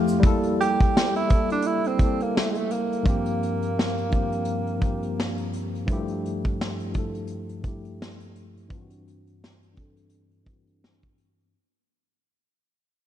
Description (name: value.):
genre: lo-fi hip hop.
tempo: 85 BPM.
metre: 4/4.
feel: swing 58% on 16ths.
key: G dorian.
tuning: A4 = 440 Hz.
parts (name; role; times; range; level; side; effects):
tine electric piano; accompaniment; 0.0-11.5 s; G2 to A4; -27 LUFS; left 2 dB; medium stereo tremolo, cassette tape, low-pass filter.
vintage brush drum kit; drums; 0.1-11.5 s; hi-hat, kick drum, snare drum; -24 LUFS; equal; none.
mellow tenor saxophone; melody; 0.6-5.5 s; Ab3 to G4; -27 LUFS; right 4 dB; low-pass filter, analog delay.
room: moderate plate reverb, RT60 2.7 s.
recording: dreamy mix soaked in reverb.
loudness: -22 LUFS.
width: side -11 dB against mid.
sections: 0.2-11.5 A section.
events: break 0.0, 5.9-11.5; fade-out 0.2-11.5; filter sweep 0.2-11.5.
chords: 0.2 Gm69; 3.1 C7sus4/G; 5.9 Fmaj9/G; 8.7 D9/G.